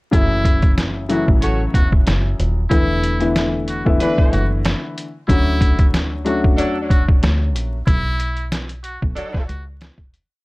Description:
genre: hip hop, boom-bap hip-hop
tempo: 93 BPM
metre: 4/4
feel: swing 55% on 16ths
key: F# minor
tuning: A4 = 440 Hz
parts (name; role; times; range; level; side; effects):
- trumpet with metal mute; melody; 0.1-9.6 s; E4 to F#4; -26 LUFS; right 1 dB; high-pass filter, low-pass filter, tape echo
- warm grand piano; accompaniment; 0.1-7.8 s; C#3 to F#4; -21 LUFS; left 2 dB; high-pass filter, low-pass filter
- deep dub fingered electric bass; bass; 0.1-9.9 s; D#1 to E2; -21 LUFS; equal; none
- trip hop sampler-style drum kit; drums; 0.1-10.3 s; hi-hat, kick drum, snare drum; -16 LUFS; equal; none
- clear horn section; stabs; 1.4-9.4 s; E3 to C#5; -25 LUFS; right 1 dB; high-pass filter, low-pass filter, tape echo
room: light reverb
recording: dark, warm production, vinyl crackle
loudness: -15 LUFS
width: side -23 dB against mid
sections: 0.1-10.4 verse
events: break 7.9-10.4; fade-out 7.9-10.4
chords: 0.1 F#m7; 2.7 E7sus4; 5.3 Dmaj7; 7.9 N.C.

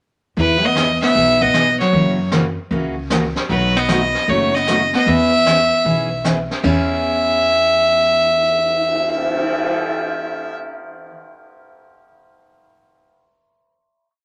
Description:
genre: country, western swing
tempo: 153 BPM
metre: 4/4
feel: swing 67% on 8ths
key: E major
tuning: A4 = 440 Hz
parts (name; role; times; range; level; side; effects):
- clear fiddle; melody; 0.4-10.5 s; B4 to E5; -19 LUFS; equal; none
- archtop guitar, miked and amplified; second line; 0.4-11.1 s; E3 to C#4; -23 LUFS; equal; none
- picked steel-string acoustic guitar; accompaniment; 0.4-11.1 s; B2 to G#4; -24 LUFS; equal; none
- upright bass; bass; 0.4-11.1 s; F#1 to F#2; -29 LUFS; equal; none
- jazz brush drum kit; drums; 0.4-9.7 s; brushed snare drum, crash cymbal, cymbal swell, hi-hat, kick drum, snare drum; -27 LUFS; equal; none
room: moderate studio reverb, RT60 0.6 s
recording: none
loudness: -17 LUFS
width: mono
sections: 0.4-6.6 A section; 6.6-9.8 final chord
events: none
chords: 0.4 Emaj7; 1.9 F#7; 3.5 B7; 5.1 E6

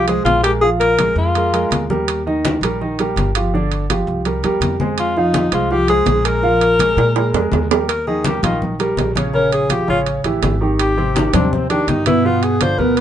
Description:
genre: Afro-Cuban jazz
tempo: 165 BPM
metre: 4/4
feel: straight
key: Eb major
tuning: A4 = 440 Hz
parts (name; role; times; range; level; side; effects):
- warm alto saxophone; melody; 0.0-1.9, 5.0-13.0 s; C4 to C5; -17 LUFS; left 2 dB; none
- warm upright piano; accompaniment; 0.0-13.0 s; Cb3 to F5; -18 LUFS; right 2 dB; none
- upright bass; bass; 0.0-13.0 s; G1 to Bb2; -22 LUFS; equal; none
- congas; percussion; 0.1-13.0 s; none; -23 LUFS; left 3 dB; none
- timbales; percussion; 0.1-13.0 s; none; -22 LUFS; right 9 dB; none
room: moderate studio reverb, RT60 0.5 s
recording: band playing live in one room, nothing above 10.3 kHz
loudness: -14 LUFS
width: side -10 dB against mid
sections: 0.0-7.9 A section; 7.9-13.0 B section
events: drum fill 7.0-7.9; alto saxophone solo 7.9-13.0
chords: 0.0 Fm; 0.6 Bb5; 2.1 Eb; 3.5 G5; 4.3 C7; 5.0 Fm7; 6.4 Bb5; 7.9 Eb; 9.3 Bbm7; 10.1 A7; 10.8 Abmaj7; 12.2 G7

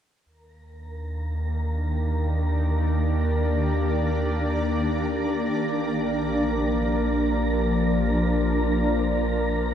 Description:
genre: ambient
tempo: free time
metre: none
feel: none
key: Eb major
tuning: A4 = 440 Hz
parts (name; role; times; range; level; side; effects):
- shimmering ambient pad; sustained chords; 1.4-9.7 s; Eb3 to D5; -24 LUFS; left 1 dB; chorus, built-in reverb, shimmer reverb
- warm sub bass; bass; 0.3-9.7 s; Bb1 to Eb2; -26 LUFS; equal; none
- wind-like tuned noise texture; texture; 0.9-9.7 s; Bb4 to Bb5; -32 LUFS; equal; built-in reverb, analog chorus, shimmer reverb
room: wet lush hall reverb, RT60 2.9 s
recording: dreamy mix soaked in reverb, cassette tape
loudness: -22 LUFS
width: side -9 dB against mid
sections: 0.3-9.7 A section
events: none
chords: 0.3 Ebmaj7; 5.6 Bb

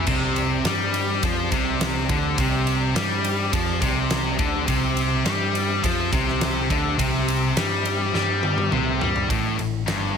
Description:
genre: hard rock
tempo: 104 BPM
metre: 4/4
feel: straight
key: unclear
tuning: A4 = 439 Hz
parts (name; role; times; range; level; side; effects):
- percussive tonewheel organ; sustained chords; 0.0-9.3 s; C4 to E5; -34 LUFS; equal; slow rotary speaker, overdrive, chorus vibrato
- crunchy overdriven guitar; riff; 0.0-10.2 s; G2 to G3; -26 LUFS; right 9 dB; none
- scooped high-gain guitar; riff; 0.0-10.2 s; G2 to G3; -24 LUFS; left 12 dB; distortion
- picked electric bass; bass; 0.0-10.2 s; G1 to G2; -28 LUFS; equal; none
- huge arena drum kit; drums; 0.1-10.0 s; crash cymbal, kick drum, ride cymbal, snare drum, toms; -26 LUFS; equal; none
room: moderate large studio reverb, RT60 0.8 s, small room ambience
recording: none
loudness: -20 LUFS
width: side -7 dB against mid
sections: 0.0-9.3 A section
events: drum fill 8.1-9.3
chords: 0.1 C5; 9.3 N.C.

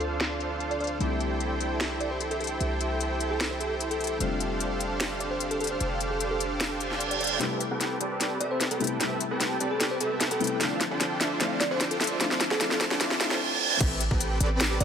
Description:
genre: future bass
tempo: 150 BPM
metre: 4/4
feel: half-time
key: A minor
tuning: A4 = 436 Hz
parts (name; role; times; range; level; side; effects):
- bell-like FM electric piano; melody; 0.0-14.8 s; A4 to D5; -34 LUFS; equal; chorus, sidechain pumping, dub echo
- felt-muted upright piano; accompaniment; 0.0-13.8 s; C3 to B4; -35 LUFS; left 6 dB; sidechain pumping, dub echo
- shimmering ambient pad; sustained chords; 0.0-13.4 s; A4 to D6; -38 LUFS; right 1 dB; chorus, built-in reverb, sidechain pumping
- dense compressed supersaw; riff; 0.0-14.8 s; C4 to G5; -31 LUFS; right 2 dB; sidechain pumping, low-pass filter, dub echo
- warm 808-style bass; bass; 0.0-14.8 s; F1 to D2; -33 LUFS; equal; sidechain pumping, high-pass filter
- trap drum kit; drums; 0.0-14.8 s; crash cymbal, finger snaps, hi-hat, snare drum; -29 LUFS; left 1 dB; low-pass filter on hats, low-pass filter on snare, low-pass filter on cymbals
- reverse cymbal and riser; sound effects; 6.8-13.8 s; none; -32 LUFS; right 6 dB; none
- electronic kick drum; drums; 13.8-14.2 s; none; -26 LUFS; equal; none
room: moderate lush hall reverb, RT60 1.8 s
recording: high-pass filter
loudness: -25 LUFS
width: side -7 dB against mid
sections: 0.0-7.4 A section; 7.4-13.8 B section; 13.8-14.8 C section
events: reverse cymbal 6.8-7.4, 13.0-13.8; build-up 7.4-13.8; drum fill 7.4-13.4; filter sweep on supersaw synth 7.4-13.8; drop 13.8-14.8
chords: 0.0 Dm7; 1.0 C6; 4.2 F69; 7.4 Am9; 10.6 Dm7; 13.8 Am9

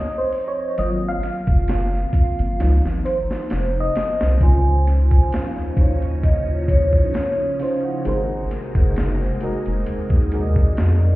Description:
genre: R&B, neo-soul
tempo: 66 BPM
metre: 4/4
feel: swing 53% on 16ths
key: Db major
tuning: A4 = 440 Hz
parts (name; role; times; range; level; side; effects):
- FM electric piano with soft pad layer; accompaniment; 0.0-11.2 s; Db3 to F5; -24 LUFS; equal; chorus, phaser
- boom bap sampler-style drum kit; drums; 0.3-11.0 s; hi-hat, kick drum, snare drum; -19 LUFS; equal; none
- round analog bass; bass; 0.8-11.2 s; F1 to F2; -19 LUFS; equal; none
- vibraphone with soft mallets; melody; 4.4-11.2 s; Db5 to Ab5; -26 LUFS; equal; tape echo
- phased string machine; sustained chords; 4.4-11.2 s; C3 to Eb4; -31 LUFS; equal; ensemble chorus, phaser
room: light reverb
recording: heard muffled through a wall, stone room reverb, EQ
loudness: -17 LUFS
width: side -18 dB against mid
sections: 0.0-4.4 A section; 4.4-11.2 B section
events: FM electric piano solo 0.0-4.4; drum fill 2.6-4.4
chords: 0.0 Dbmaj9; 0.8 Ab13; 2.6 Dbmaj9; 8.0 Ab13

